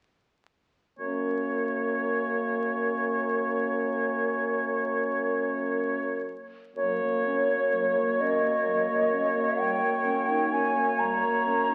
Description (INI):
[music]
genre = classical, slow romantic movement for wind quintet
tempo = 35-44 BPM (dotted quarters)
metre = 12/8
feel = rubato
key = F# major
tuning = A4 = 439 Hz
[part]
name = clear oboe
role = second line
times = 1.0-11.7 s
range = C#5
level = -32 LUFS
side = equal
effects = none
[part]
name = mellow French horn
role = accompaniment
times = 1.0-11.7 s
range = A#3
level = -34 LUFS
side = equal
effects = none
[part]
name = warm clarinet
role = accompaniment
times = 1.0-11.7 s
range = F#3 to D#4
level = -39 LUFS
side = equal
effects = none
[part]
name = mellow bassoon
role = bass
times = 1.0-11.7 s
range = F#2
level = -34 LUFS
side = equal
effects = none
[part]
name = hollow concert flute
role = melody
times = 6.8-11.7 s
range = C#5 to A#5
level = -29 LUFS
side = equal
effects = none
[sound]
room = wet recital hall reverb, RT60 1.4 s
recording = very old 78 rpm record, vinyl crackle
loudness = -27 LUFS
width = mono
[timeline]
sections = 1.0-6.8 A section; 6.8-11.7 B section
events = none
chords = 1.0 F#; 9.6 D#7/F#